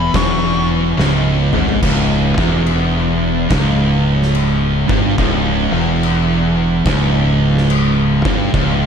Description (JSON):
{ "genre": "stoner and doom metal", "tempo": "71 BPM", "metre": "4/4", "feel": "swing 66% on 8ths", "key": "C# minor", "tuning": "A4 = 444 Hz", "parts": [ { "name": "fuzz lead guitar", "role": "melody", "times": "0.0-0.7 s", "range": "B5 to C#6", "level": "-23 LUFS", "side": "left 2 dB", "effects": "wah, distortion, ping-pong delay" }, { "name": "distorted electric guitar", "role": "riff", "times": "0.0-8.9 s", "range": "C#2 to G#2", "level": "-20 LUFS", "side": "equal", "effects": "overdrive" }, { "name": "thick fuzz guitar", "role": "riff", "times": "0.0-8.9 s", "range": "C#2 to G#2", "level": "-19 LUFS", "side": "left 7 dB", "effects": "distortion" }, { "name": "thick fuzz guitar", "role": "riff", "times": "0.0-8.9 s", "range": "C#2 to G#2", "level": "-18 LUFS", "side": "right 8 dB", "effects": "distortion" }, { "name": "growling fingered electric bass", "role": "bass", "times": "0.0-8.9 s", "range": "C#1 to G#1", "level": "-21 LUFS", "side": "equal", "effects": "overdrive" }, { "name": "oversized low-tuned drum kit", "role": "drums", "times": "0.1-8.8 s", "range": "crash cymbal, kick drum, snare drum, toms", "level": "-20 LUFS", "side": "equal", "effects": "none" } ], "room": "small room ambience", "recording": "none", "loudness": "-12 LUFS", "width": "side -7 dB against mid", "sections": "0.0-1.8 A section; 1.8-8.9 B section", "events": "lead electric guitar solo 0.0-1.8; drum fill 1.0-1.8", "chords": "0.0 C#m" }